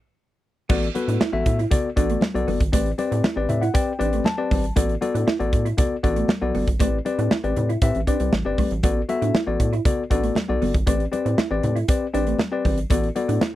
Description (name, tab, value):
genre	early-eighties boogie funk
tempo	118 BPM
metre	4/4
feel	straight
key	unclear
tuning	A4 = 440 Hz
part	tine electric piano	accompaniment	0.7-13.4 s	B3 to A5	-24 LUFS	left 4 dB	none
part	mellow electric guitar	riff	0.7-13.5 s	A3 to E4	-29 LUFS	right 4 dB	ensemble chorus
part	rubbery square bass	bass	0.7-13.4 s	G1 to A2	-25 LUFS	right 1 dB	none
part	modern studio drum kit	drums	0.7-13.5 s	crash cymbal, hi-hat, kick drum, snare drum	-22 LUFS	right 1 dB	none
part	congas	percussion	0.7-13.5 s	none	-31 LUFS	left 3 dB	none
room	little or no reverb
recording	dry, close 1970s-style studio recording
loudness	-19 LUFS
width	side -14 dB against mid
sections	0.7-13.6 A section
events	stop 0.0-0.7; tine electric piano fill 3.2-4.8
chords	0.0 N.C.; 0.7 Bm7/A; 2.7 Am11; 4.8 Bm7/A; 6.8 Am11; 8.8 Bm7/A; 10.9 Am11; 12.9 Bm7/A